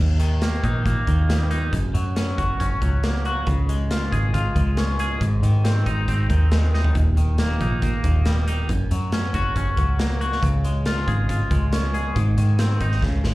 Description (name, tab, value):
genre	quiet-loud alternative rock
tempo	138 BPM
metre	4/4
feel	straight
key	unclear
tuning	A4 = 441 Hz
part	twangy electric guitar	arpeggios	0.0-13.3 s	Eb2 to Ab4	-26 LUFS	left 1 dB	wide subtle chorus, slapback echo
part	overdriven picked electric bass	bass	0.0-13.3 s	Eb1 to Ab2	-21 LUFS	equal	none
part	big rock drum kit	drums	0.2-13.3 s	hi-hat, kick drum, snare drum, toms	-25 LUFS	equal	none
room	small room ambience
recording	live gig heard through the venue's PA, club reverb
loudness	-19 LUFS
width	side -18 dB against mid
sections	0.0-13.3 A section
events	drum fill 6.7, 13.0-13.3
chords	0.0 Eb; 1.7 Gb; 3.5 Db; 5.2 Ab; 7.0 Eb; 8.7 Gb; 10.4 Db; 12.2 Ab